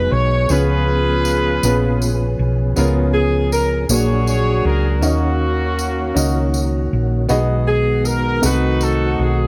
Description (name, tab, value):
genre	slow gospel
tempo	53 BPM (dotted quarters)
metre	6/8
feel	straight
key	unclear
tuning	A4 = 440 Hz
part	mellow horn section	melody	0.0-9.5 s	A#3 to C#5	-22 LUFS	equal	none
part	warm upright piano	accompaniment	0.0-9.5 s	G#2 to D#5	-25 LUFS	equal	none
part	percussive tonewheel organ	sustained chords	0.0-9.5 s	D#3 to G#4	-27 LUFS	equal	fast rotary speaker, overdrive, chorus vibrato
part	hollow-body short-scale fingered electric bass	bass	0.0-9.5 s	A#1 to D#2	-21 LUFS	equal	none
part	tambourine	percussion	0.5-9.2 s	none	-29 LUFS	equal	none
room	light reverb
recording	none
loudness	-17 LUFS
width	mono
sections	0.0-9.5 A section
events	none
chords	0.5 C#7; 3.9 A#7alt; 5.0 D#m7; 7.3 B6; 8.4 Cdim7